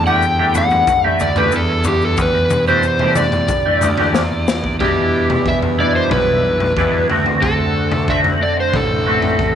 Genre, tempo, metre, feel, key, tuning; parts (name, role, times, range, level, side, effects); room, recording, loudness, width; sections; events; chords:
psychedelic rock; 92 BPM; 4/4; straight; E minor; A4 = 440 Hz
overdriven slide guitar; melody; 0.0-9.6 s; G4 to G5; -18 LUFS; equal; slapback echo
hand-pumped harmonium; sustained chords; 0.0-9.6 s; G3 to B5; -28 LUFS; right 10 dB
fuzz picked electric bass; bass; 0.0-9.6 s; A1 to E2; -21 LUFS; right 1 dB; overdrive
twangy electric guitar; riff; 0.1-9.6 s; E2 to G4; -18 LUFS; equal; rotary speaker, double-tracked left and right
egg shaker; percussion; 0.1-4.6 s; -34 LUFS; left 17 dB
raw garage drum kit; drums; 0.6-9.5 s; kick drum, snare drum, toms; -20 LUFS; left 2 dB
light reverb, studio ambience; 1960s-style stereo with parts hard left and right; -13 LUFS; side -9 dB against mid
0.0-4.8 A section; 4.8-9.6 B section
electric slide guitar solo 0.0-4.8; drum fill 4.1-4.8
0.0 Gadd9; 4.8 Em7; 7.1 D7